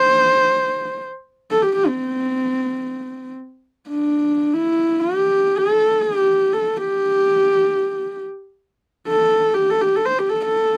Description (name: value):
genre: mongolian traditional, Mongolian folk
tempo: free time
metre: none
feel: none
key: C gong mode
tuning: A4 = 439 Hz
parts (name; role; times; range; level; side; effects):
- rich horsehead fiddle; solo; 0.0-10.8 s; C4 to C5; -19 LUFS; equal; none
room: light reverb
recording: dry, close 1970s-style studio recording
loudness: -19 LUFS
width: mono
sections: 0.0-3.5 A section; 3.5-10.8 A section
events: none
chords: none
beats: free time